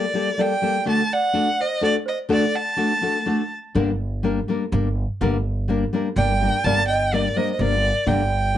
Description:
mexican folk, mariachi; 125 BPM; 3/4; rubato; G harmonic minor; A4 = 440 Hz
rich violin; melody; 0.0-3.5, 6.2-8.6 s; D5 to A5; -22 LUFS; right 1 dB
celesta; second line; 0.0-3.5, 6.2-8.6 s; A4 to F#5; -27 LUFS; right 2 dB
nylon-string guitar; accompaniment; 0.0-8.6 s; G2 to Bb4; -23 LUFS; left 3 dB
upright bass; bass; 3.8-8.6 s; G1; -23 LUFS; right 1 dB
moderate small room reverb, RT60 0.5 s; nothing above 10.9 kHz; -19 LUFS; side -11 dB against mid
0.0-8.6 A section
0.0 Gmadd9; 0.9 D; 3.8 Gm
0.38 | 0.86 1.34 1.81 | 2.29 2.77 3.26 | 3.75 4.25 4.73 | 5.21 5.69 6.17 | 6.64 7.12 7.59 | 8.07 8.55

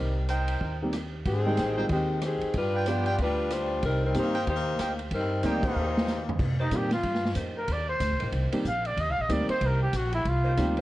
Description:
jazz, big band swing; 187 BPM; 4/4; swing 62% on 8ths; C minor; A4 = 440 Hz
warm saxophone section; melody; 0.0-6.3 s; Eb3 to D5; -29 LUFS; left 2 dB; tape echo
upright bass; bass; 0.0-10.8 s; Ab1 to C3; -29 LUFS; equal
clear trumpet section; stabs; 0.3-5.9 s; Eb4 to G5; -35 LUFS; right 2 dB
swinging big-band drum kit; drums; 0.3-10.8 s; crash cymbal, hi-hat, kick drum, ride cymbal, rim click, snare drum, toms; -34 LUFS; equal
warm concert grand piano; accompaniment; 0.8-10.8 s; Eb3 to G4; -31 LUFS; right 1 dB
warm trumpet; melody; 6.6-10.8 s; Eb4 to F5; -29 LUFS; equal
warm saxophone section; sustained chords; 6.6-10.8 s; Bb3 to C5; -38 LUFS; right 1 dB
light reverb; worn, warbling old tape, cassette tape, warbly pitch drift; -25 LUFS; side -16 dB against mid
0.0-6.4 A section; 6.4-10.8 B section
band accent 5.6; drum fill 5.8-6.4; trumpet solo 6.4-10.8
0.0 Cm7; 1.3 Abmaj7; 2.5 G7; 3.8 Cm7
0.29 0.61 0.93 | 1.25 1.57 1.90 2.22 | 2.54 2.86 3.18 3.50 | 3.82 4.15 4.47 4.79 | 5.11 5.43 5.75 6.08 | 6.40 6.72 7.04 7.36 | 7.68 8.01 8.33 8.65 | 8.97 9.29 9.61 9.94 | 10.26 10.58

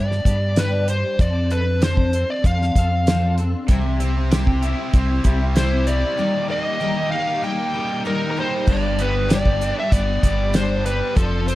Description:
folk rock and heartland rock; 96 BPM; 4/4; straight; G mixolydian; A4 = 441 Hz
smooth overdriven lead guitar; melody; 0.0-11.6 s; A4 to G5; -24 LUFS; equal; slapback echo
picked twelve-string acoustic guitar; accompaniment; 0.0-11.6 s; G2 to A4; -26 LUFS; left 3 dB; ensemble chorus
deep dub fingered electric bass; bass; 0.0-11.6 s; F1 to G2; -21 LUFS; equal
damped 70s drum kit; drums; 0.1-11.6 s; crash cymbal, hi-hat, kick drum, snare drum; -19 LUFS; equal
cranked stack guitar; riff; 3.7-11.6 s; G2 to G4; -26 LUFS; right 1 dB; overdrive
small room ambience; dark, warm production; -17 LUFS; side -16 dB against mid
0.0-8.7 A section; 8.7-11.6 A section
break 6.2-8.7
0.0 G; 1.2 F6; 3.7 C; 6.2 Eb; 8.7 G
0.56 | 1.19 1.81 2.44 3.06 | 3.69 4.32 4.94 5.56 | 6.19 6.81 7.43 8.06 | 8.68 9.30 9.92 10.54 | 11.16

